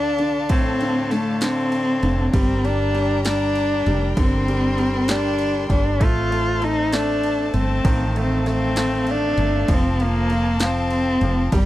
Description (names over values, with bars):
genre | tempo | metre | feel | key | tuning
six-eight pop ballad | 65 BPM (dotted quarters) | 6/8 | straight | G minor | A4 = 439 Hz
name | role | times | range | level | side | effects
warm cello | melody | 0.0-11.7 s | G3 to F4 | -21 LUFS | left 1 dB | none
bright grand piano | accompaniment | 0.0-11.7 s | A2 to A3 | -27 LUFS | right 2 dB | none
warm studio string section | sustained chords | 0.0-11.7 s | C4 to C6 | -31 LUFS | left 1 dB | none
woody fretless electric bass | bass | 0.0-11.7 s | F1 to D2 | -23 LUFS | equal | none
deep house drum kit | drums | 0.2-11.7 s | kick drum, ride cymbal, snare drum | -21 LUFS | equal | none
room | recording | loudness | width
little or no reverb | dry, close 1970s-style studio recording | -18 LUFS | side -15 dB against mid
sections
0.0-11.7 A section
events
none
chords
0.0 Dm; 2.3 Gm; 6.0 Adim; 9.7 F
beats
| 0.49 1.41 | 2.33 3.25 | 4.17 5.09 | 6.01 6.93 | 7.85 8.77 | 9.68 10.60 | 11.53